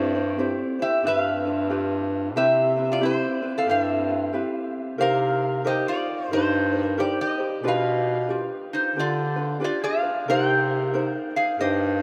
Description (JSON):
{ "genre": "Hawaiian", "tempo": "91 BPM", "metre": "4/4", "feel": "swing 62% on 8ths", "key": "C major, C minor from 5.0 s", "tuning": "A4 = 440 Hz", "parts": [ { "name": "metal-body resonator slide guitar", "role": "melody", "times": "0.0-12.0 s", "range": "Eb4 to G5", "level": "-27 LUFS", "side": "equal", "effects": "none" }, { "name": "ukulele", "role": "accompaniment", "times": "0.0-12.0 s", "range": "C4 to C5", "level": "-30 LUFS", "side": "equal", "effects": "none" }, { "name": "clear bass clarinet", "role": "bass", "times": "0.0-12.0 s", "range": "G2 to D3", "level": "-28 LUFS", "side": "equal", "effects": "none" } ], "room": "wet cathedral reverb, RT60 6.3 s", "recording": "in a vast, echoing space", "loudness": "-24 LUFS", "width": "mono", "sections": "0.0-5.0 A section; 5.0-12.0 B section", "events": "none", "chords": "0.0 C/G; 1.0 G7; 2.4 Cmaj7; 5.0 Cm7; 7.6 G7/B; 10.3 Cm7" }